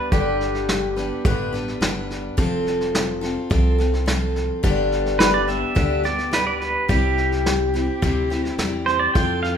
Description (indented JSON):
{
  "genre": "honky-tonk and classic country",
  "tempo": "106 BPM",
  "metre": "4/4",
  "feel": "straight",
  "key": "G mixolydian",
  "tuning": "A4 = 440 Hz",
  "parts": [
    { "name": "pedal steel guitar", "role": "second line", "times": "0.0-1.8, 5.2-9.6 s", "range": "G4 to G5", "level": "-23 LUFS", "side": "right 4 dB", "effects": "none" },
    { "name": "picked steel-string acoustic guitar", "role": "accompaniment", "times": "0.0-9.6 s", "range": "G2 to B4", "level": "-23 LUFS", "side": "left 2 dB", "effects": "none" },
    { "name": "upright bass", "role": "bass", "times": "0.1-9.6 s", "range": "F1 to F2", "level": "-26 LUFS", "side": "equal", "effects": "none" },
    { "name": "vintage brush drum kit", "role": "drums", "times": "0.1-9.5 s", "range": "hi-hat, kick drum, snare drum", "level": "-23 LUFS", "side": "equal", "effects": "none" }
  ],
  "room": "moderate recital hall reverb, RT60 1.4 s",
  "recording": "minimal, uncompressed stereo recording",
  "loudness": "-19 LUFS",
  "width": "side -8 dB against mid",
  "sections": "0.0-9.6 A section",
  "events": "pedal steel guitar solo 0.0-9.6",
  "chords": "0.0 G; 2.4 F; 4.6 G; 6.9 C"
}